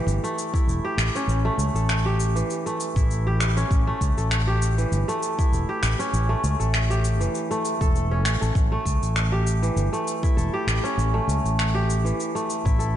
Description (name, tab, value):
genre	organic downtempo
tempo	99 BPM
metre	4/4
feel	swing 54% on 16ths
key	unclear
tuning	A4 = 440 Hz
part	kora	arpeggios	0.0-13.0 s	E3 to A4	-26 LUFS	right 1 dB	digital delay, slapback echo
part	fretless electric bass	bass	0.1-13.0 s	E1 to C#2	-23 LUFS	equal	sidechain pumping
part	electronic cabasa and finger snaps	drums	0.1-12.9 s	none	-30 LUFS	left 1 dB	none
part	electronic kick drum	drums	0.5-12.8 s	none	-22 LUFS	equal	none
room	light reverb, digital ambience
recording	nothing above 10.5 kHz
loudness	-21 LUFS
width	side -11 dB against mid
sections	0.0-13.0 A section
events	none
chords	0.0 A7